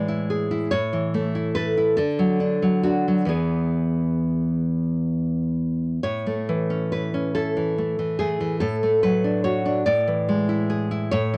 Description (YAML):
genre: romantic piece for solo classical guitar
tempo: 43-48 BPM (dotted quarters)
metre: 6/8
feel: rubato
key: A major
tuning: A4 = 440 Hz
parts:
  - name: nylon-string guitar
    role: solo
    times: 0.0-11.4 s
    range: E2 to D5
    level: -23 LUFS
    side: equal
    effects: none
room: little or no reverb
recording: dry, close 1970s-style studio recording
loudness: -23 LUFS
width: mono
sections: 0.0-11.4 A section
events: none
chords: 0.0 E7/A; 0.7 A; 2.0 D; 3.3 E; 6.0 A; 8.6 D/A; 9.9 E7/A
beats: | 0.72 1.98 | 3.30 4.66 | 6.04 7.36 | 8.62 9.87 | 11.12